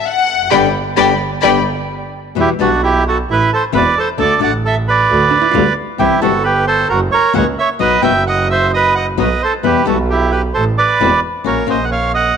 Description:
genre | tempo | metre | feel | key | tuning
tango | 132 BPM | 4/4 | rubato | E minor | A4 = 440 Hz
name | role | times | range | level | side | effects
warm studio violin section | second line | 0.0-1.6 s | D5 to B5 | -14 LUFS | left 7 dB | none
clear double bass | bass | 0.3-12.3 s | E1 to E2 | -19 LUFS | right 3 dB | transformer saturation
hollow-body jazz guitar | second line | 0.5-1.6, 5.3-6.0 s | D4 to D5 | -22 LUFS | right 11 dB | none
flamenco guitar | accompaniment | 0.5-11.8 s | B2 to F#4 | -19 LUFS | left 10 dB | none
bandoneon | melody | 2.4-12.4 s | D4 to G5 | -13 LUFS | right 4 dB | none
room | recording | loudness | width
moderate echo chamber reverb, RT60 2.5 s | 1960s-style stereo with parts hard left and right | -11 LUFS | side -7 dB against mid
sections
0.0-2.4 A section; 2.4-12.4 B section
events
violin section solo 0.0-2.4; band accent 0.5-2.4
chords
0.0 N.C.; 0.5 G; 2.4 Emadd9; 3.3 Amadd9; 4.2 D; 5.1 G7/D (rootless); 6.0 C; 6.9 F#7; 7.8 B; 9.6 Em; 10.5 Am; 11.5 F#/A#

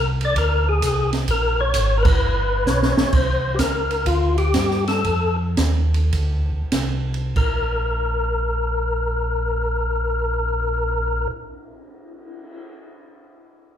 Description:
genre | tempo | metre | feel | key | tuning
soul jazz organ trio | 91-130 BPM | 4/4 | swing 67% on 8ths | unclear | A4 = 439 Hz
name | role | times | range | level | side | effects
percussive tonewheel organ | melody | 0.0-11.3 s | F4 to D5 | -22 LUFS | left 2 dB | slow rotary speaker, overdrive, chorus vibrato
mellow tonewheel organ | bass | 0.0-11.3 s | G1 to G2 | -22 LUFS | equal | slow rotary speaker
open jazz drum kit | drums | 0.2-12.5 s | crash cymbal, cymbal swell, hi-hat, kick drum, ride cymbal, snare drum | -23 LUFS | right 2 dB | none
room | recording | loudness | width
moderate large studio reverb, RT60 1.1 s | heard from further back in the room | -18 LUFS | side -9 dB against mid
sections
0.0-3.1 A section; 3.1-7.4 B section; 7.4-12.6 C section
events
band accent 2.0; drum fill 2.7-3.1; slowing down 3.1-7.4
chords
0.0 Bb7; 2.2 G; 3.1 Csus2; 5.1 F5; 7.4 N.C.

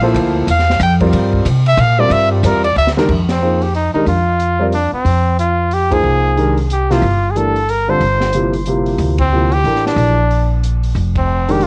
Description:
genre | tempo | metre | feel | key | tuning
modal jazz | 183 BPM | 3/4 | swing 62% on 8ths | unclear | A4 = 439 Hz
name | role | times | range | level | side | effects
warm trumpet | melody | 0.0-11.7 s | C4 to G5 | -19 LUFS | equal | cassette tape, analog delay
warm concert grand piano | accompaniment | 0.0-11.6 s | C3 to D5 | -20 LUFS | equal | cassette tape
upright bass | bass | 0.0-11.7 s | F1 to C3 | -18 LUFS | equal | none
open jazz drum kit | drums | 0.2-11.7 s | crash cymbal, hi-hat, kick drum, ride cymbal, snare drum | -28 LUFS | equal | vintage 12-bit sampler grit, cassette tape
room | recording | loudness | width
light reverb | home recording on cassette | -14 LUFS | mono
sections
0.0-3.1 A section; 3.1-11.7 B section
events
trumpet solo 0.0-3.1; drum fill 2.8-3.1; band accent 3.3, 5.9, 9.2, 11.1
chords
0.0 Gm11; 3.1 Fm11; 7.0 Gm11; 11.0 Fm11

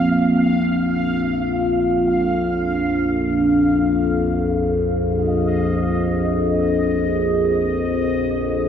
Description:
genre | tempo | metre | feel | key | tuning
dark ambient drone | free time | none | none | unclear | A4 = 440 Hz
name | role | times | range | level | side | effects
overtone-sweeping drone | drone | 0.0-8.7 s | Bb1 to F2 | -17 LUFS | equal | chorus, built-in reverb, phaser
bubbling stepped-filter texture | texture | 0.0-8.7 s | Eb5 to F5 | -27 LUFS | equal | chorus, built-in reverb
room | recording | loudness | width
wet lush hall reverb, RT60 3.0 s | dreamy mix soaked in reverb, cassette tape | -17 LUFS | side -8 dB against mid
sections
0.0-8.7 A section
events
none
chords
0.0 Bb5

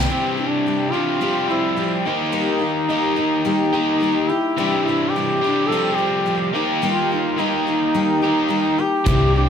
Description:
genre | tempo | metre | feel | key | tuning
folk rock and heartland rock | 107 BPM | 4/4 | straight | unclear | A4 = 441 Hz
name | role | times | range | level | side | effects
dark concert grand piano | accompaniment | 0.0-0.1, 9.1-9.5 s | C4 to E4 | -36 LUFS | right 4 dB | none
picked twelve-string acoustic guitar | accompaniment | 0.0-9.5 s | C3 to G4 | -24 LUFS | left 3 dB | slapback echo
crunchy overdriven guitar | riff | 0.0-9.5 s | C3 to G4 | -22 LUFS | equal | none
upright bass | bass | 0.0, 9.1-9.5 s | C2 | -18 LUFS | equal | none
mellow duduk | melody | 0.1-9.5 s | C4 to A4 | -21 LUFS | equal | slapback echo, analog delay
unplugged drum kit | drums | 9.1-9.2 s | hi-hat, kick drum | -22 LUFS | equal | none
room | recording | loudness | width
moderate recital hall reverb, RT60 1.4 s, small room ambience | big arena sound | -17 LUFS | side -8 dB against mid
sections
0.1-9.5 A section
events
none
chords
0.1 Cadd9; 1.2 Fsus2; 2.1 Eb; 4.6 Cadd9; 5.7 Fsus2; 6.5 Eb

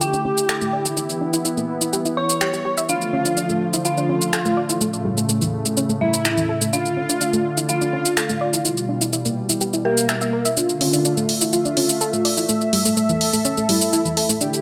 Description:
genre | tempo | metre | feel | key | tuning
melodic techno | 125 BPM | 4/4 | straight | D harmonic minor | A4 = 440 Hz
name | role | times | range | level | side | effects
soft supersaw | melody | 0.0-14.6 s | Bb3 to C#5 | -27 LUFS | equal | low-pass filter, delay
dark detuned synth bell | second line | 0.0-10.5 s | Bb4 to C#6 | -31 LUFS | equal | chorus, tape echo
warm analog pad | sustained chords | 0.0-14.6 s | A2 to E5 | -28 LUFS | equal | chorus
soft round pluck | arpeggios | 0.0-14.5 s | E3 to E5 | -26 LUFS | equal | chorus, tape echo
punchy analog drum machine | drums | 0.0-14.6 s | finger snaps, hi-hat, shaker | -24 LUFS | equal | overdrive
room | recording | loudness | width
light reverb | none | -20 LUFS | mono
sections
0.0-10.6 A section; 10.6-14.6 B section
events
build-up 10.6-14.6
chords
0.0 D5; 1.0 Em; 2.9 Dm; 4.8 A; 6.7 Dm; 8.7 Edim; 10.6 Dm; 12.5 A5

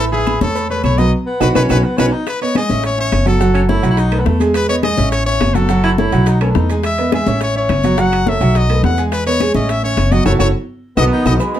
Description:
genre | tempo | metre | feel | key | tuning
latin, salsa | 210 BPM | 4/4 | straight | E major | A4 = 441 Hz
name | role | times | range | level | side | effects
brilliant trumpet | melody | 0.0-11.3 s | G#4 to F#5 | -19 LUFS | left 4 dB | none
clear grand piano | accompaniment | 0.0-11.6 s | E3 to G#5 | -18 LUFS | right 3 dB | none
upright bass | bass | 0.0-11.4 s | F#1 to E2 | -17 LUFS | equal | none
agogo bells and timbales | percussion | 0.1-11.6 s | none | -27 LUFS | right 6 dB | none
congas | percussion | 0.1-11.6 s | none | -22 LUFS | left 3 dB | none
maracas | percussion | 0.1-11.6 s | none | -39 LUFS | right 4 dB | none
claves | percussion | 0.3-11.5 s | none | -34 LUFS | right 7 dB | none
cowbell and bongos | percussion | 0.3-11.5 s | none | -26 LUFS | left 8 dB | none
clear baritone saxophone | second line | 1.3-6.8, 11.0-11.4 s | A3 to E4 | -21 LUFS | equal | none
bright trombone section | melody | 11.0-11.6 s | B2 to B3 | -18 LUFS | right 2 dB | none
room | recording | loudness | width
moderate studio reverb, RT60 0.5 s | dark, warm production | -12 LUFS | side -11 dB against mid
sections
0.0-2.3 A section; 2.3-11.4 B section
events
drum fill 1.1-2.3, 10.7-11.4; band accent 1.1-2.3, 10.3-11.4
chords
0.0 A; 1.1 B; 2.3 Emaj7; 2.8 A; 3.4 F#madd11; 4.0 B5; 4.6 Emaj7; 5.1 A; 5.7 F#m7; 6.3 B5; 6.8 Emaj7; 7.4 A; 8.0 F#m7; 8.5 B7; 9.1 Emaj7; 9.7 F#m7; 10.8 B7

